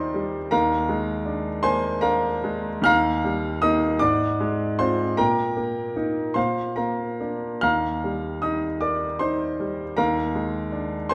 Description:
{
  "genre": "classical, romantic character piece for solo piano",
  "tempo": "51 BPM (dotted quarters)",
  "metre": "6/8",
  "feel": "uneven beats, rubato",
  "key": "Eb major",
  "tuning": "A4 = 445 Hz",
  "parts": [
    { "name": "clear grand piano", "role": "solo", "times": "0.0-11.1 s", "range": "Eb2 to F6", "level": "-24 LUFS", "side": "equal", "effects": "none" }
  ],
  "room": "wet recital hall reverb, RT60 1.7 s",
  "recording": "none",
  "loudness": "-24 LUFS",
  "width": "mono",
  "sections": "0.0-11.1 A section",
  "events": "none",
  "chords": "0.0 Eb; 0.5 Bb7/Eb; 2.9 Eb; 4.0 Fm/Ab; 5.2 Eb/Bb; 6.4 Bb; 7.6 Eb; 10.0 Bb7/Eb"
}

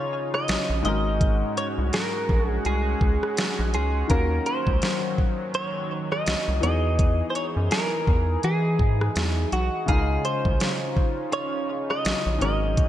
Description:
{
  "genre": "contemporary R&B",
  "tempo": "83 BPM",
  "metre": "4/4",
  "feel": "swing 58% on 16ths",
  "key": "unclear",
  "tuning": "A4 = 442 Hz",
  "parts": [
    { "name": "direct-recorded clean electric guitar", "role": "melody", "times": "0.0-12.9 s", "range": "Gb4 to Eb5", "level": "-27 LUFS", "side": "equal", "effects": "analog chorus, digital delay" },
    { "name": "clear grand piano", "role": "accompaniment", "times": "0.0-12.9 s", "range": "Ab2 to Eb5", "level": "-32 LUFS", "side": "left 3 dB", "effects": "none" },
    { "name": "chorused pulse-width pad", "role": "sustained chords", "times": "0.0-12.9 s", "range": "Db3 to G#4", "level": "-32 LUFS", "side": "right 1 dB", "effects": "none" },
    { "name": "soft round pluck", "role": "texture", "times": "0.0-10.9 s", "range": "Ab5 to F6", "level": "-42 LUFS", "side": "equal", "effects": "none" },
    { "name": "smooth R&B drum kit", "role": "drums", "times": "0.3-12.9 s", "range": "hi-hat, kick drum, rim click, snare drum", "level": "-25 LUFS", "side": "equal", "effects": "vintage 12-bit sampler grit, gated reverb" },
    { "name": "rubbery square bass", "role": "bass", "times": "0.5-12.9 s", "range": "Ab1 to E3", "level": "-25 LUFS", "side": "equal", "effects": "none" }
  ],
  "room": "light reverb",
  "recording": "bright 1980s-style digital production",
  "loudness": "-22 LUFS",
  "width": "side -12 dB against mid",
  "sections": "0.0-12.9 A section",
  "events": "none",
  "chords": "0.0 Dbadd9; 0.8 Ab7sus4; 4.1 Ebm7; 6.6 Emaj7; 9.9 Dbmaj9"
}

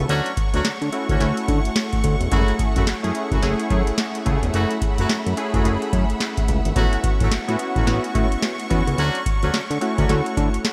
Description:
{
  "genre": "R&B, new jack swing",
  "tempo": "108 BPM",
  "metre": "4/4",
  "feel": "swing 61% on 16ths",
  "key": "F# minor",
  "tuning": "A4 = 439 Hz",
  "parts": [
    { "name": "warm analog keys", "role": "accompaniment", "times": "0.0-10.7 s", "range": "G#3 to C#5", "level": "-28 LUFS", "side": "equal", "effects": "chorus" },
    { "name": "warm studio string section", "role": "sustained chords", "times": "0.0-10.7 s", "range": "A3 to C#6", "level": "-33 LUFS", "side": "equal", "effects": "none" },
    { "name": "fat analog bass", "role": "bass", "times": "0.0-10.5 s", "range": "E1 to D3", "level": "-25 LUFS", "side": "equal", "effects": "none" },
    { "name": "mellow horn section", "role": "stabs", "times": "0.1-10.2 s", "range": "F#3 to F#4", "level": "-30 LUFS", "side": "equal", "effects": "none" },
    { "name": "booming analog drum machine", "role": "drums", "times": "0.1-10.7 s", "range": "handclaps, hi-hat, kick drum, snare drum", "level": "-24 LUFS", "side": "equal", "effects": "none" }
  ],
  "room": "light reverb",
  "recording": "bright 1980s-style digital production",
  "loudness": "-21 LUFS",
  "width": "mono",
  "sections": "0.0-10.7 A section",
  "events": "none",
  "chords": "0.1 Dmaj7; 2.3 F#m7; 6.8 A6; 9.0 Dmaj7"
}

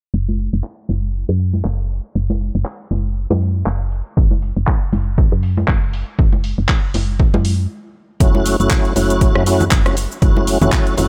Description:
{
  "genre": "deep house",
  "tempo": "119 BPM",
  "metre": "4/4",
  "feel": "swing 57% on 16ths",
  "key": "F# minor",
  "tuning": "A4 = 436 Hz",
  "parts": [
    { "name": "woody FM bass", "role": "bass", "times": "0.1-11.1 s", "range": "F#1 to F#2", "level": "-21 LUFS", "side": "equal", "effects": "tube saturation, sidechain pumping" },
    { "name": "congas", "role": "percussion", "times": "0.3-11.1 s", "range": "none", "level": "-26 LUFS", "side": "equal", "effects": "none" },
    { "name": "house drum kit", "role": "drums", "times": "0.4-11.1 s", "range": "cabasa, handclaps, hi-hat, rim click", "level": "-26 LUFS", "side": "equal", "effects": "none" },
    { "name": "electronic kick drum", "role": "drums", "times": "4.2-10.8 s", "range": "none", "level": "-17 LUFS", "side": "equal", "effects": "none" },
    { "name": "tonewheel organ", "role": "stabs", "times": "8.2-11.1 s", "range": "F#3 to F#4", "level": "-20 LUFS", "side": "equal", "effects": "chorus vibrato, slow rotary speaker, sidechain pumping, dub echo" }
  ],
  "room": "digital ambience",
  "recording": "low-pass filter",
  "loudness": "-17 LUFS",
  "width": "mono",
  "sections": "0.1-8.2 A section; 8.2-11.1 B section",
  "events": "filter sweep on FM bass 0.1-8.2; filter sweep 0.1-8.2; stop 7.7-8.2",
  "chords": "0.1 N.C.; 8.2 F#m7"
}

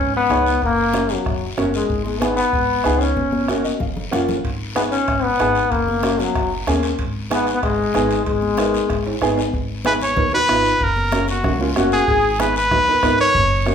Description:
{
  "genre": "latin, cumbia",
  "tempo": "188 BPM",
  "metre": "4/4",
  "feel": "straight",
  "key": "G# dorian",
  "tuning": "A4 = 440 Hz",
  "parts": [
    { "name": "clear trombone", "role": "second line", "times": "0.0-9.2, 11.6-12.3 s", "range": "F#3 to G#4", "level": "-19 LUFS", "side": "left 3 dB", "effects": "none" },
    { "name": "upright bass", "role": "bass", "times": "0.0-13.7 s", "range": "F#1 to D#2", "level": "-26 LUFS", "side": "equal", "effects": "none" },
    { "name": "congas", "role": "percussion", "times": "0.1-13.7 s", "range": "none", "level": "-29 LUFS", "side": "left 2 dB", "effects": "none" },
    { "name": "warm upright piano", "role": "accompaniment", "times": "0.3-13.7 s", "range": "A#3 to F#5", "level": "-22 LUFS", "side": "right 2 dB", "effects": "none" },
    { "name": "bombo", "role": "percussion", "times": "0.3-13.7 s", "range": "none", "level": "-27 LUFS", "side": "right 1 dB", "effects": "none" },
    { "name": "guiro", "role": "percussion", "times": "0.3-13.7 s", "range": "none", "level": "-34 LUFS", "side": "left 5 dB", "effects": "none" },
    { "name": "timbales", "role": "percussion", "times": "4.4-9.5 s", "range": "none", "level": "-33 LUFS", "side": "right 4 dB", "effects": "none" },
    { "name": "clear trumpet", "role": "melody", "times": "9.9-13.7 s", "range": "F#4 to C#5", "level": "-17 LUFS", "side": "right 1 dB", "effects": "none" }
  ],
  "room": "wet large studio reverb, RT60 0.9 s",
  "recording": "band playing live in one room",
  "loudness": "-16 LUFS",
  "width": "side -7 dB against mid",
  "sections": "0.0-9.5 A section; 9.5-13.7 B section",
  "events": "trombone solo 0.0-9.5; drum fill 3.2-4.4, 9.1-9.5; upright piano fill 3.5-4.4",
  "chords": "0.0 G#m; 0.6 F#; 1.9 G#m; 3.2 F#; 4.4 G#m; 5.7 F#; 7.0 G#m; 10.8 F#; 12.1 G#m"
}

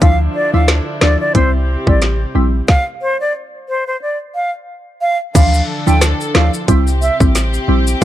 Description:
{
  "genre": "dancehall",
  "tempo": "90 BPM",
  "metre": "4/4",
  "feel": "swing 56% on 16ths",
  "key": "D minor",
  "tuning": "A4 = 443 Hz",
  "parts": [
    { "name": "silver concert flute", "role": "melody", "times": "0.0-8.0 s", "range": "C5 to G5", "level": "-18 LUFS", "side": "right 1 dB", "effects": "analog delay" },
    { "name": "glassy wavetable pluck", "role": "accompaniment", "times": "0.0-8.0 s", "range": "E3 to E4", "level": "-19 LUFS", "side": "left 1 dB", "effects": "chorus" },
    { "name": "warm studio string section", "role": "sustained chords", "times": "0.0-8.0 s", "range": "C3 to A4", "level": "-24 LUFS", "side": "equal", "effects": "sidechain pumping" },
    { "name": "clean 808-style bass", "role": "bass", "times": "0.0-8.0 s", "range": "A1 to D2", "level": "-14 LUFS", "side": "equal", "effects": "none" },
    { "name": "island pop drum kit", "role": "drums", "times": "0.0-8.0 s", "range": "crash cymbal, hi-hat, kick drum, rim click, snare drum", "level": "-14 LUFS", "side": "equal", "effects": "none" },
    { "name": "maracas", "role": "percussion", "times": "5.4-8.0 s", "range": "none", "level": "-26 LUFS", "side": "left 5 dB", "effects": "none" }
  ],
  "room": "small room reverb",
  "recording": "dry, gritty hardware recording",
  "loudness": "-12 LUFS",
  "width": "side -13 dB against mid",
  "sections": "0.0-5.4 A section; 5.4-8.0 B section",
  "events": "stop 2.7-5.4",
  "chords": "0.0 Dmadd9; 1.4 C; 2.7 N.C.; 5.4 Dmadd9; 6.7 C"
}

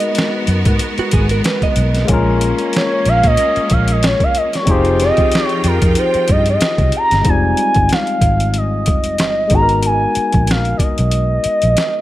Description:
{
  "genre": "R&B, neo-soul",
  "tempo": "93 BPM",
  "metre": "4/4",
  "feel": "swing 56% on 16ths",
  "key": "F minor",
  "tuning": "A4 = 440 Hz",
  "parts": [
    { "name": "expressive portamento lead", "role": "melody", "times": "0.0-12.0 s", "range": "Bb4 to Bb5", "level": "-16 LUFS", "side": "right 1 dB", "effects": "chorus" },
    { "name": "barky tine electric piano", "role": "accompaniment", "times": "0.0-12.0 s", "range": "G3 to Bb4", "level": "-21 LUFS", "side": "left 4 dB", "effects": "overdrive" },
    { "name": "bright studio string section", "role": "sustained chords", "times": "0.0-7.2 s", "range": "F3 to G5", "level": "-23 LUFS", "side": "right 1 dB", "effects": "none" },
    { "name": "boom bap sampler-style drum kit", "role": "drums", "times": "0.0-11.9 s", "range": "hi-hat, kick drum, snare drum", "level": "-18 LUFS", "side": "equal", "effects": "none" },
    { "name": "vintage muted fingered electric bass", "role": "bass", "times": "0.5-11.7 s", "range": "F1 to Bb2", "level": "-17 LUFS", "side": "equal", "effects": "none" },
    { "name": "hollow-body jazz guitar", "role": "second line", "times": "1.0-2.1 s", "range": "Gb4 to Eb5", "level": "-22 LUFS", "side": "right 6 dB", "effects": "none" }
  ],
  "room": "light reverb, digital ambience",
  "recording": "none",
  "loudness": "-12 LUFS",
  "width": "side -15 dB against mid",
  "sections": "0.0-7.3 A section; 7.3-12.0 B section",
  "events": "analog synth lead solo 0.0-7.3",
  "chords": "0.0 Abm9; 2.1 Bbm7; 4.7 Fm9; 9.5 Abm9"
}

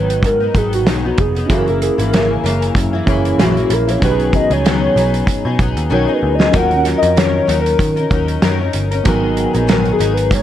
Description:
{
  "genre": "indie pop, bedroom pop",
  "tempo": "95 BPM",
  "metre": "4/4",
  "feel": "swing 55% on 16ths",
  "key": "Eb minor",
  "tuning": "A4 = 440 Hz",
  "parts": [
    { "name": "warbly nostalgic lead", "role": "melody", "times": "0.0-10.4 s", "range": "Eb4 to Gb5", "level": "-18 LUFS", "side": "left 2 dB", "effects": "analog chorus, analog delay" },
    { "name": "mellow reed electric piano", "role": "accompaniment", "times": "0.0-10.4 s", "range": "Cb4 to Bb5", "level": "-22 LUFS", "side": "right 5 dB", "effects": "fast tremolo, cassette tape" },
    { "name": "picked steel-string acoustic guitar", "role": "accompaniment", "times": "0.0-10.4 s", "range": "Gb2 to Bb4", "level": "-20 LUFS", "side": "left 4 dB", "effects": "analog chorus, warbly pitch drift" },
    { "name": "vintage muted picked electric bass", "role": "bass", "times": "0.0-10.4 s", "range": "F1 to Eb3", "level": "-19 LUFS", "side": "equal", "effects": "none" },
    { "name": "loose indie drum kit", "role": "drums", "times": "0.1-10.4 s", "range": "hi-hat, kick drum, snare drum", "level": "-18 LUFS", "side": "right 1 dB", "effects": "none" }
  ],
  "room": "light reverb, studio reverb",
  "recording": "none",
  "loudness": "-12 LUFS",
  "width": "side -11 dB against mid",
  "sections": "0.0-10.4 A section",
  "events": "soft synth lead solo 0.0-10.4; drum fill 5.9-6.5",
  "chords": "0.0 Abm7; 1.5 Gb7; 4.0 B6; 6.5 Ebm7; 9.1 Abm7"
}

